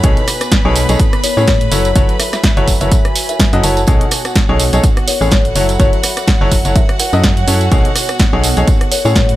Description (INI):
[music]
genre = piano house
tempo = 125 BPM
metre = 4/4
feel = swing 56% on 16ths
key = F# dorian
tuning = A4 = 440 Hz
[part]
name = warm chamber violin section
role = sustained chords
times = 0.0-9.4 s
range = F#4 to B5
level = -24 LUFS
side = right 1 dB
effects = sidechain pumping
[part]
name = clear baby grand piano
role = riff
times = 0.0-9.2 s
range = A2 to D#5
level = -18 LUFS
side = left 1 dB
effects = sidechain pumping
[part]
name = organ-like FM bass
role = bass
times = 0.0-9.4 s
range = F#1 to A2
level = -16 LUFS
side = equal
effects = sidechain pumping
[part]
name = electronic kick drum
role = drums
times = 0.0-9.3 s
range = none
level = -13 LUFS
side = equal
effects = none
[part]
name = punchy analog drum machine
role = drums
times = 0.0-9.4 s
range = hi-hat, rim click, snare drum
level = -18 LUFS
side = equal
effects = none
[part]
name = tambourine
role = percussion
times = 0.0-9.3 s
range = none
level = -24 LUFS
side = right 6 dB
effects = none
[part]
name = warbly tape-like pad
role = texture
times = 0.0-9.4 s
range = B3 to B5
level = -26 LUFS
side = right 1 dB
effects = chorus, built-in reverb, sidechain pumping
[part]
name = kalimba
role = melody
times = 1.2-9.3 s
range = C#5 to A5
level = -21 LUFS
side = left 4 dB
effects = tape echo
[sound]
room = small room ambience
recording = none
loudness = -10 LUFS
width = side -15 dB against mid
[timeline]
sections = 0.0-9.4 A section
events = none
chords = 0.0 B13; 1.0 Amaj9; 1.7 F#m7; 3.9 B13; 4.8 Amaj9; 5.6 F#m7; 7.7 B13; 8.7 Amaj9